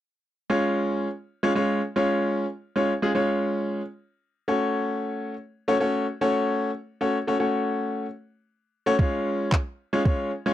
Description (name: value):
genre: dance-pop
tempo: 113 BPM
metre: 4/4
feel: straight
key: unclear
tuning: A4 = 440 Hz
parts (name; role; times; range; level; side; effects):
- clear grand piano; accompaniment; 0.5-10.5 s; G#3 to C#5; -23 LUFS; equal; sidechain pumping
- smooth R&B drum kit; drums; 9.0-10.2 s; handclaps, kick drum; -22 LUFS; right 1 dB; none
room: little or no reverb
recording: dry, close 1970s-style studio recording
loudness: -23 LUFS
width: side -12 dB against mid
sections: 0.5-10.5 A section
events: none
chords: 0.5 C#; 4.5 F#m; 9.0 C#